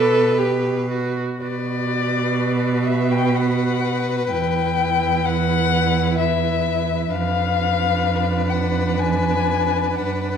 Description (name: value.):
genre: classical, slow romantic movement for string quartet.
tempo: 63 BPM.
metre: 3/4.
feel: uneven beats, rubato.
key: B minor.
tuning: A4 = 443 Hz.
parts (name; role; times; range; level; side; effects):
muted violin; melody; 0.0-10.4 s; D5 to D6; -23 LUFS; left 9 dB; none.
muted violin; second line; 0.0-10.4 s; B4 to Cb5; -26 LUFS; left 4 dB; none.
muted viola; accompaniment; 0.0-10.4 s; D4 to A4; -26 LUFS; right 3 dB; none.
muted cello; bass; 0.0-10.4 s; E2 to B2; -21 LUFS; right 4 dB; none.
room: moderate recital hall reverb, RT60 1.4 s.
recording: none.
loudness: -18 LUFS.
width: side -7 dB against mid.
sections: 0.0-1.4 A section; 1.4-10.4 B section.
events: none.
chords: 0.0 Bm; 4.3 Em; 7.1 Fdim7.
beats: 0.40 | 1.42 2.38 3.34 | 4.30 5.25 6.18 | 7.11 8.02 8.98 | 9.97.